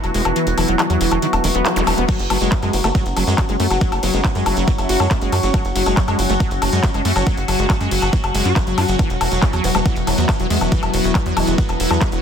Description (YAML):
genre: psychedelic trance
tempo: 139 BPM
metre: 4/4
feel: straight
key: unclear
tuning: A4 = 440 Hz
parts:
  - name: overtone-sweeping drone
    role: sustained chords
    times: 0.0-12.2 s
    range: F#3 to F#4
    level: -23 LUFS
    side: left 3 dB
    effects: chorus, built-in reverb, sidechain pumping
  - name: liquid acid bass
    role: riff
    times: 0.0-12.2 s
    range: D#3 to F#4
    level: -24 LUFS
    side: moving between left 4 dB and right 5 dB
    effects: chorus, auto-pan, sidechain pumping, digital delay
  - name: tight sequencer bass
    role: bass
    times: 0.0-12.2 s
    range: E1 to F#2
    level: -21 LUFS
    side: equal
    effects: none
  - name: techno drum kit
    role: drums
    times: 0.0-12.2 s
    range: crash cymbal, handclaps, hi-hat, woodblock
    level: -23 LUFS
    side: left 2 dB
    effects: none
  - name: warbly tape-like pad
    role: texture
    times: 0.0-12.2 s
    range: B3 to F#5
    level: -25 LUFS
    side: right 1 dB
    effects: chorus, built-in reverb, sidechain pumping
  - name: zap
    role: sound effects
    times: 1.8-1.9 s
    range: none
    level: -27 LUFS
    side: equal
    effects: none
  - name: electronic kick drum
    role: drums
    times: 2.1-12.1 s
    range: none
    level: -18 LUFS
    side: equal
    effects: none
  - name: shekere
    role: percussion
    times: 2.1-12.2 s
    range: none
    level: -33 LUFS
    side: right 3 dB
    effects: none
  - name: formant-sweep wobble bass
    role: second line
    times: 2.7-5.1, 9.6-11.5 s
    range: F#3 to E4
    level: -31 LUFS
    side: left 1 dB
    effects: wide subtle chorus, sidechain pumping, high-pass filter, ping-pong delay
room: little or no reverb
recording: dense, heavily limited modern master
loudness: -15 LUFS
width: side -8 dB against mid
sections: 0.0-2.1 A section; 2.1-12.2 B section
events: kick drops out 0.4-2.1; band accent 1.7; drop 2.1-12.2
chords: 0.0 E5; 2.1 F#5; 9.0 E5